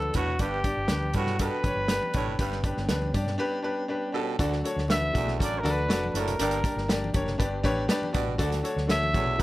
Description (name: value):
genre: uptempo 1960s-style soul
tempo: 120 BPM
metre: 4/4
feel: straight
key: unclear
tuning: A4 = 439 Hz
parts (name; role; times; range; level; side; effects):
- warm trumpet; melody; 0.0-9.4 s; F#4 to E5; -29 LUFS; equal; none
- clear grand piano; accompaniment; 0.0-9.4 s; G2 to D5; -30 LUFS; left 1 dB; none
- mellow tonewheel organ; sustained chords; 0.0-9.4 s; F#3 to D4; -40 LUFS; left 1 dB; none
- hollow-body short-scale fingered electric bass; bass; 0.0-9.4 s; F1 to G2; -31 LUFS; equal; none
- congas; percussion; 0.0-9.4 s; none; -40 LUFS; left 3 dB; none
- raspy baritone saxophone; riff; 0.1-9.4 s; D2 to B2; -35 LUFS; right 9 dB; none
- warm soul drum kit; drums; 0.1-9.4 s; hi-hat, kick drum, snare drum; -29 LUFS; equal; none
room: light reverb, small room ambience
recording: none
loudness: -24 LUFS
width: side -17 dB against mid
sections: 0.0-4.4 A section; 4.4-9.4 B section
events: trumpet solo 0.0-4.4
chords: 0.4 G; 4.4 D; 6.4 Gm; 7.4 G; 8.4 D